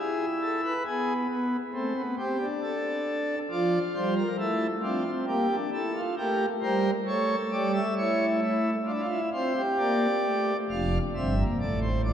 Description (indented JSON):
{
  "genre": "classical, baroque-style 4-part fugue for pipe organ",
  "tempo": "67 BPM",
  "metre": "4/4",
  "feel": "straight",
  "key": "D minor",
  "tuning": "A4 = 441 Hz",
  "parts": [
    { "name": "pipe organ, principal chorus", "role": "solo", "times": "0.0-12.1 s", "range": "F1 to F5", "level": "-25 LUFS", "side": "equal", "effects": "none" }
  ],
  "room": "wet church reverb, RT60 3.8 s",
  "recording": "dark, warm production",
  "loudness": "-25 LUFS",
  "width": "side -9 dB against mid",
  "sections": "0.0-10.7 A section; 10.7-12.1 B section",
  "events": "none",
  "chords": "0.0 E; 1.7 Am; 3.5 Dm/F; 5.3 Gm/Bb; 7.1 A7; 8.9 Dm; 10.7 Dm/F"
}